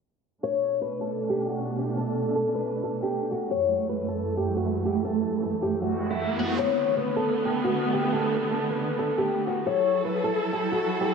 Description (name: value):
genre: hip hop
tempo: 156 BPM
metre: 4/4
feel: half-time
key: unclear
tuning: A4 = 440 Hz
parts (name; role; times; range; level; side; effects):
- picked old ladder-braced acoustic guitar; melody; 0.4-11.1 s; E4 to C#5; -26 LUFS; left 2 dB; analog chorus, low-pass filter, diffuse ambient delay
- dark symphonic string section; sustained chords; 0.4-11.1 s; F#2 to A4; -28 LUFS; right 3 dB; stereo widening
- riser; sound effects; 5.6-6.6 s; none; -32 LUFS; left 2 dB; none
room: wet plate reverb, RT60 2.6 s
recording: dreamy mix soaked in reverb, low-pass filter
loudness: -24 LUFS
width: side -5 dB against mid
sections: 0.4-6.6 A section; 6.6-11.1 B section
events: filter sweep 0.4-6.6; riser 5.6-6.6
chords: 0.4 Bm7; 3.5 F#m7; 6.6 Bm7; 9.7 F#m7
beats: | 0.43 0.81 1.20 1.58 | 1.97 2.35 2.74 3.12 | 3.51 3.89 4.28 4.66 | 5.05 5.43 5.82 6.20 | 6.58 6.97 7.35 7.74 | 8.12 8.51 8.89 9.28 | 9.66 10.05 10.43 10.81